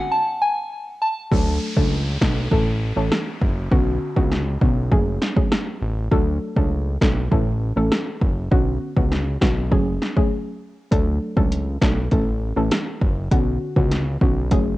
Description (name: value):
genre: dancehall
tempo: 100 BPM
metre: 4/4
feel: straight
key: unclear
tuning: A4 = 440 Hz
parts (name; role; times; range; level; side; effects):
- soft synth bell; melody; 0.0-1.1 s; G#5 to A5; -21 LUFS; left 1 dB; chorus, phaser, cassette tape
- soft round pluck; accompaniment; 1.3-14.7 s; D3 to A4; -24 LUFS; equal; chorus, sidechain pumping, cassette tape
- fat analog bass; bass; 1.3-14.8 s; F#1 to D2; -23 LUFS; equal; none
- deep house drum kit; drums; 1.3-14.7 s; hi-hat, kick drum, rim click, snare drum; -20 LUFS; equal; overdrive, cassette tape
- downlifter; sound effects; 1.3-6.1 s; none; -35 LUFS; equal; none
room: digital ambience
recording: home recording on cassette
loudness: -18 LUFS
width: side -17 dB against mid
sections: 0.0-1.3 A section; 1.3-14.8 B section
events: drums muted 0.1-1.3; hi-hats muted 1.3-10.9; break 10.3-10.9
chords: 0.1 N.C.; 1.3 D; 2.5 A; 3.7 Bmadd9; 4.9 F#madd9; 6.1 D; 7.3 A; 8.5 Bmadd9; 9.7 F#madd9; 10.9 D; 12.1 A; 13.3 Bmadd9